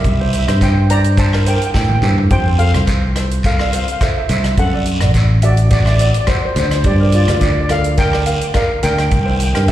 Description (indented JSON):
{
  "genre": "calypso",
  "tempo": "106 BPM",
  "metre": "4/4",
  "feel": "swing 54% on 16ths",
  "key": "F major",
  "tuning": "A4 = 440 Hz",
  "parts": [
    { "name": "steel pan", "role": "melody", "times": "0.0-9.7 s", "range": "F4 to Bb5", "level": "-20 LUFS", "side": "equal", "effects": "plate reverb, slapback echo, tape echo" },
    { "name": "ukulele", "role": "accompaniment", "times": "0.0-9.7 s", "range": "E4 to F5", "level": "-25 LUFS", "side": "right 2 dB", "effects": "plate reverb, slapback echo" },
    { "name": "fingered electric bass", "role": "bass", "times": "0.0-9.7 s", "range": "A1 to A2", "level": "-14 LUFS", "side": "equal", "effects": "none" },
    { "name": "warm soul drum kit", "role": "drums", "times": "0.0-9.7 s", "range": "hi-hat, kick drum, rim click, snare drum, toms", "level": "-18 LUFS", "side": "equal", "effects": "none" },
    { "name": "guiro", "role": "percussion", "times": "0.0-9.7 s", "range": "none", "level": "-27 LUFS", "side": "right 1 dB", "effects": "slapback echo" }
  ],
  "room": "light reverb",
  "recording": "live gig heard through the venue's PA, recital hall reverb",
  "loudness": "-12 LUFS",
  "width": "side -13 dB against mid",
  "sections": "0.0-9.7 A section",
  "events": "drum fill 1.7-2.3",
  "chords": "0.0 C; 2.3 F; 4.6 D; 6.8 Gm; 9.1 C"
}